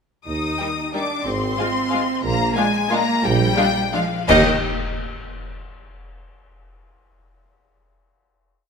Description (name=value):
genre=classical, orchestral ballroom waltz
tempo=161-197 BPM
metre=3/4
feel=rubato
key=Eb major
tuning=A4 = 440 Hz
part: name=clear symphonic violin section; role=melody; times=0.3-4.5 s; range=Eb5 to Eb6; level=-23 LUFS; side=left 6 dB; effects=none
part: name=clear tuba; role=bass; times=0.3-4.4 s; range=Ab1 to Eb2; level=-27 LUFS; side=right 2 dB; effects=none
part: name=rich symphonic cello section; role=bass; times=0.3-4.5 s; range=Eb3 to Eb4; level=-24 LUFS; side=right 2 dB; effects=none
part: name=warm symphonic double bass section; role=bass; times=0.3-4.5 s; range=Ab1 to Eb2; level=-26 LUFS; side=right 3 dB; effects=none
part: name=rich symphonic violin section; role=second line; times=0.6-4.5 s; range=F4 to G5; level=-24 LUFS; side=left 5 dB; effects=none
part: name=clear symphonic viola section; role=accompaniment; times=0.6-4.5 s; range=G3 to F4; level=-25 LUFS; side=right 1 dB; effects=none
part: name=cymbal swell, clash cymbals and concert bass drum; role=percussion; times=2.2-5.0 s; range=none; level=-28 LUFS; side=left 1 dB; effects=none
room=moderate concert hall reverb, RT60 2.0 s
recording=none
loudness=-18 LUFS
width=side -5 dB against mid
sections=0.3-4.3 A section; 4.3-5.3 final chord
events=band accent 4.3-4.6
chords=0.3 Eb; 1.3 Fm/Ab; 2.2 Bb7; 4.3 Eb5